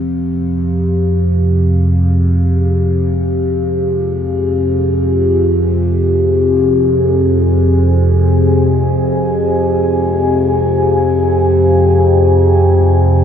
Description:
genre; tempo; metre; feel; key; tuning
dark ambient drone; free time; none; none; unclear; A4 = 440 Hz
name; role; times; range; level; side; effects
deep dark ambient pad; sustained chords; 0.0-13.2 s; C4 to Ab5; -21 LUFS; equal; chorus, built-in reverb, shimmer reverb
overtone-sweeping drone; drone; 0.0-13.2 s; F2 to C3; -11 LUFS; equal; chorus, built-in reverb, phaser
room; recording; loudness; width
wet cathedral reverb, RT60 5.5 s; dark, warm production; -11 LUFS; side -8 dB against mid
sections
0.0-13.2 A section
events
fade-in on ambient pad 0.0-13.2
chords
0.0 Fm

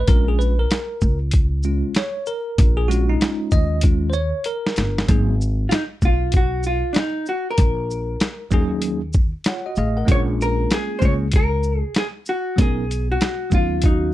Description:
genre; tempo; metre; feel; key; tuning
hip hop, jazz-hop; 96 BPM; 4/4; swing 66% on 16ths; G# dorian; A4 = 440 Hz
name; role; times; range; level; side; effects
bell-like tine electric piano; accompaniment; 0.0-14.1 s; F#3 to F#5; -24 LUFS; equal; fast stereo tremolo
upright bass; bass; 0.0-14.1 s; G1 to D#2; -21 LUFS; equal; none
boom bap sampler-style drum kit; drums; 0.1-14.0 s; hi-hat, kick drum, shaker, snare drum; -18 LUFS; equal; none
vintage hollow-body jazz guitar; melody; 5.7-14.1 s; D4 to C#5; -24 LUFS; left 1 dB; none
vibraphone with soft mallets; second line; 13.8-14.1 s; F#4; -24 LUFS; left 3 dB; none
room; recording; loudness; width
little or no reverb; dark, warm production; -18 LUFS; side -14 dB against mid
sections
0.0-5.1 A section; 5.1-14.1 B section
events
tine electric piano solo 0.0-5.1; drum fill 3.8-5.1; tine electric piano fill 9.1-10.1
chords
0.1 A#m7; 2.6 D#7sus4/A#; 5.1 G#m; 7.6 F#6/A#; 10.1 A#m7; 12.6 Bmaj7

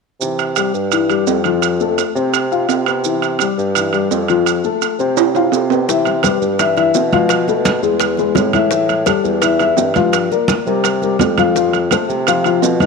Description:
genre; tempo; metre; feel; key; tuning
latin, salsa; 169 BPM; 4/4; straight; C major; A4 = 440 Hz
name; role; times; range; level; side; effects
dark grand piano; accompaniment; 0.2-12.9 s; Eb3 to F5; -16 LUFS; left 8 dB; none
mellow bassoon; bass; 0.2-12.9 s; E2 to C3; -20 LUFS; right 3 dB; none
maracas; percussion; 0.2-12.9 s; none; -28 LUFS; right 16 dB; none
timbales; percussion; 0.4-12.9 s; none; -19 LUFS; right 14 dB; none
bongos; percussion; 5.9-12.9 s; none; -25 LUFS; left 10 dB; none
congas; percussion; 5.9-12.9 s; none; -22 LUFS; right 3 dB; none
room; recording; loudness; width
wet echo chamber reverb, RT60 2.1 s; 1960s-style stereo with parts hard left and right; -13 LUFS; side -4 dB against mid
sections
0.2-5.9 A section; 5.9-12.9 B section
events
drum fill 5.2-5.9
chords
0.2 C; 1.6 F; 3.0 C; 4.5 F; 5.9 Cmaj7; 7.3 Eadd11; 8.0 E; 8.7 A5; 10.1 Gm7; 10.8 C5; 11.6 F

